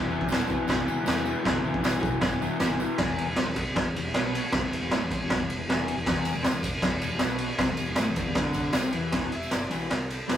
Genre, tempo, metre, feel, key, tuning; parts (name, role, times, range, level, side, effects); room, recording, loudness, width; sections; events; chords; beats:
garage rock duo or trio; 156 BPM; 4/4; straight; A4 = 439 Hz
crunchy overdriven guitar; riff; 0.0-10.4 s; E2 to E3; -30 LUFS; left 2 dB
growling picked electric bass; bass; 0.0-10.4 s; E1 to E2; -38 LUFS; equal; overdrive, tube saturation
tambourine; percussion; 0.1-2.9, 6.1-10.4 s; -45 LUFS; right 3 dB
raw garage drum kit; drums; 0.2-10.4 s; crash cymbal, kick drum, ride cymbal, snare drum; -26 LUFS; equal
overdriven combo organ; melody; 9.3-10.4 s; A4 to E5; -38 LUFS; equal; spring reverb
moderate studio ambience, RT60 0.5 s; rough rehearsal-room recording, warm saturation; -24 LUFS; side -10 dB against mid
0.0-3.0 A section; 3.0-9.1 B section; 9.1-10.4 C section
0.0 Em; 3.0 E5
0.29 0.67 1.05 | 1.44 1.82 2.21 2.59 | 2.98 3.36 3.75 4.13 | 4.52 4.90 5.29 5.67 | 6.06 6.44 6.83 7.21 | 7.59 7.98 8.37 8.75 | 9.14 9.52 9.91 10.29